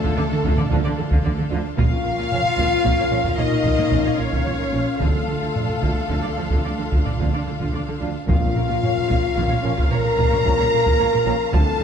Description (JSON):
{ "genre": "cinematic, epic orchestral film score", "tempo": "74 BPM (dotted quarters)", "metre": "12/8", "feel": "straight", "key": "unclear", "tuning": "A4 = 440 Hz", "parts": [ { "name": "rich symphonic violin section", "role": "melody", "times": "0.0-11.8 s", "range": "A4 to Bb5", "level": "-31 LUFS", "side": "left 4 dB", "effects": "none" }, { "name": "mellow hollow silver concert flute", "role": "second line", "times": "0.0-11.8 s", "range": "A4 to Bb5", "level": "-29 LUFS", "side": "left 2 dB", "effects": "none" }, { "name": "rich symphonic violin section", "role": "second line", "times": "0.0-11.8 s", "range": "A4 to Bb5", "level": "-30 LUFS", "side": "equal", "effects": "none" }, { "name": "clear symphonic viola section", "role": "accompaniment", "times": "0.0-11.8 s", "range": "F4 to F5", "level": "-31 LUFS", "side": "right 1 dB", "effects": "none" }, { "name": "clear symphonic string section", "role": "sustained chords", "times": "0.0-11.8 s", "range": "Db4 to F5", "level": "-32 LUFS", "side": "left 1 dB", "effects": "none" }, { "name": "mellow French horn section", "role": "sustained chords", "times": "0.0-11.8 s", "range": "A3 to Bb4", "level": "-24 LUFS", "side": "left 4 dB", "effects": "none" }, { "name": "rich symphonic cello section", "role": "bass", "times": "0.0-11.8 s", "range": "Bb2 to D3", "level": "-26 LUFS", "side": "right 4 dB", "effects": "none" }, { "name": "taiko ensemble", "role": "drums", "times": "0.0-11.8 s", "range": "none", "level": "-23 LUFS", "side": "equal", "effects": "none" }, { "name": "clear symphonic double bass section", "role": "bass", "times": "0.2-11.8 s", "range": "Bb1 to D2", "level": "-28 LUFS", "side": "right 4 dB", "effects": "none" }, { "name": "mellow trombone section", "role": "sustained chords", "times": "0.7-11.4 s", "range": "F3 to D4", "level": "-34 LUFS", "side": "right 4 dB", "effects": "none" }, { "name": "timpani", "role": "percussion", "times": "8.3-9.1 s", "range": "Bb2", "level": "-27 LUFS", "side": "equal", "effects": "none" } ], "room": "moderate scoring stage reverb, RT60 1.9 s", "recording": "dark, warm production", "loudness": "-18 LUFS", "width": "side -7 dB against mid", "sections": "0.0-11.8 A section", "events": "none", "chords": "0.0 Dm; 1.8 Bbm; 5.0 Dm; 8.3 Bbm", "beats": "0.17 0.98 | 1.78 2.58 3.38 4.19 | 5.00 5.83 6.65 7.47 | 8.28 9.10 9.92 10.73 | 11.54" }